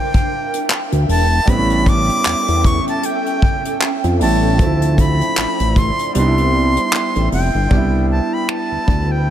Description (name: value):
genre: contemporary R&B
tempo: 77 BPM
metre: 4/4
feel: swing 58% on 16ths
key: C major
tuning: A4 = 440 Hz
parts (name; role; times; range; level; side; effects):
- bright reedy concert flute; melody; 0.0-9.3 s; G5 to D6; -20 LUFS; left 1 dB; tape echo
- warm baby grand piano; accompaniment; 0.0-9.3 s; F3 to F4; -23 LUFS; right 5 dB; none
- ethereal airy pad; sustained chords; 0.0-9.3 s; C#4 to B5; -24 LUFS; right 1 dB; ensemble chorus, built-in reverb, sidechain pumping
- soft brush drum kit; drums; 0.1-9.1 s; finger snaps, handclaps, hi-hat, kick drum; -18 LUFS; equal; none
- fat analog bass; bass; 0.9-9.3 s; E1 to F2; -16 LUFS; equal; none
room: small room reverb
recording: none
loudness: -14 LUFS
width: side -11 dB against mid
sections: 0.0-7.7 A section; 7.7-9.3 B section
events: kick muted 6.2-7.7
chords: 0.0 Bb6; 1.5 A7; 4.6 Dm7; 6.2 Cmaj7